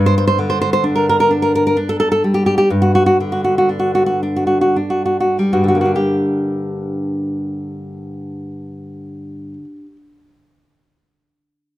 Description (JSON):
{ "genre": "romantic piece for solo classical guitar", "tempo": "48-70 BPM", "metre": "3/4", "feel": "rubato", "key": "G minor", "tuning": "A4 = 440 Hz", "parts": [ { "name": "nylon-string guitar", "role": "solo", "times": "0.0-10.0 s", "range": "G2 to C5", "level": "-15 LUFS", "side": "equal", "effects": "none" } ], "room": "light reverb", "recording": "close, detailed microphones", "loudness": "-14 LUFS", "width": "side -15 dB against mid", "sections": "0.0-6.0 A section; 6.0-9.2 B section", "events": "slowing down 0.0-6.0", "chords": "0.0 G5; 6.0 Gm" }